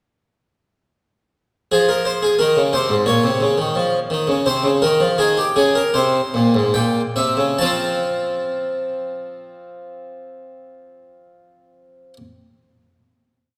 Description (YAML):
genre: classical, baroque-style two-part invention for harpsichord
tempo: 70-90 BPM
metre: 4/4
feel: straight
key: unclear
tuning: A4 = 441 Hz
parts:
  - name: harpsichord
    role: solo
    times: 1.7-12.2 s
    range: Ab2 to A5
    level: -19 LUFS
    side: equal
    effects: none
room: wet concert hall reverb, RT60 2.4 s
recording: none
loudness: -18 LUFS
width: mono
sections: 1.7-7.6 exposition; 7.6-11.0 final chord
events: slowing down 1.7-9.3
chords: 1.7 Fm; 3.1 Bbm; 4.5 Fm/C; 5.9 C7; 7.6 F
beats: | 1.72 2.39 3.06 3.75 | 4.45 5.18 5.95 6.75 | 7.59 8.45 9.30 10.16